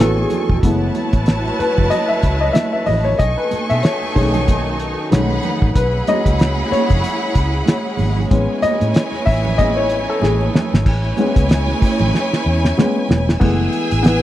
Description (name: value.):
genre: lush 1970s-style soul.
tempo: 94 BPM.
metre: 4/4.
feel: swing 58% on 16ths.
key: unclear.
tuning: A4 = 437 Hz.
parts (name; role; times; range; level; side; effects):
warm studio violin section; second line; 0.0-14.2 s; E4 to C#6; -24 LUFS; right 1 dB; none.
warm baby grand piano; accompaniment; 0.0-14.2 s; D#3 to E5; -20 LUFS; left 2 dB; none.
electric guitar through a small old amp; riff; 0.0-0.6 s; F#4 to A4; -24 LUFS; right 8 dB; ensemble chorus.
vintage muted fingered electric bass; bass; 0.0-14.2 s; E1 to B2; -19 LUFS; equal; tube saturation.
cloth-damped thuddy drum kit; drums; 0.0-14.2 s; crash cymbal, hi-hat, kick drum, snare drum; -16 LUFS; equal; none.
congas; percussion; 0.2-13.3 s; none; -25 LUFS; right 5 dB; none.
warm studio string section; sustained chords; 0.6-14.2 s; E3 to E6; -27 LUFS; equal; none.
room: little or no reverb.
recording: dry, close 1970s-style studio recording.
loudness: -14 LUFS.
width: side -13 dB against mid.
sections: 0.0-10.9 A section; 10.9-13.4 B section.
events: grand piano solo 0.0-10.9, 10.9-13.4; drum fill 10.2-10.9, 12.1-13.4.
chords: 0.0 Amaj7; 0.6 F#m11; 3.2 B13; 5.8 E69; 8.3 Amaj7; 13.4 F#m11.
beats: | 0.64 1.27 1.92 2.56 | 3.19 3.83 4.47 5.11 | 5.75 6.39 7.03 7.67 | 8.31 8.95 9.59 10.22 | 10.86 11.50 12.14 12.78 | 13.41 14.05.